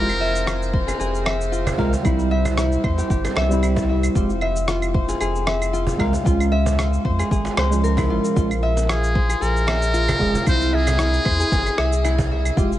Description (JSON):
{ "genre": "organic downtempo", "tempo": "114 BPM", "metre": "4/4", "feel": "swing 54% on 16ths", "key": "F harmonic minor", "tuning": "A4 = 435 Hz", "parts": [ { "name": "trumpet with metal mute", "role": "melody", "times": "0.0-1.0, 8.9-12.3 s", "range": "Ab4 to C5", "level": "-25 LUFS", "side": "equal", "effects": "tape echo" }, { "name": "barky tine electric piano", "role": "accompaniment", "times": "0.0-12.7 s", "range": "F3 to Bb4", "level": "-25 LUFS", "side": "right 2 dB", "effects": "wide subtle chorus, sidechain pumping, tape echo" }, { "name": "concert harp", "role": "arpeggios", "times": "0.0-12.8 s", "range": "E4 to F5", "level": "-24 LUFS", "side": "left 2 dB", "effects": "tape echo" }, { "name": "warm sub bass", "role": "bass", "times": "0.0-12.8 s", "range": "F1 to F2", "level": "-22 LUFS", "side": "equal", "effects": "tube saturation" }, { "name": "drifting glass-harmonics texture", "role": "texture", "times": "0.0-8.4 s", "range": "C4 to C5", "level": "-35 LUFS", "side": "right 2 dB", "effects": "chorus, built-in reverb" }, { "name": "electronic claves, cabasa and rim click", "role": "drums", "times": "0.1-12.8 s", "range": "none", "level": "-28 LUFS", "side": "right 1 dB", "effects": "overdrive" }, { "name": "electronic kick drum", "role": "drums", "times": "0.7-12.7 s", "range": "none", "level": "-22 LUFS", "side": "equal", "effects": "none" }, { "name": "cajon", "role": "percussion", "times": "0.9-12.3 s", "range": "none", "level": "-31 LUFS", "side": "right 2 dB", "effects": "none" } ], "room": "light reverb", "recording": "nothing above 10.4 kHz", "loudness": "-18 LUFS", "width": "side -13 dB against mid", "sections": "0.0-8.4 A section; 8.4-12.8 B section", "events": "none", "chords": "0.0 Fm; 2.0 C; 4.2 Fmadd9; 6.3 Db; 8.4 Bbm7; 10.5 C" }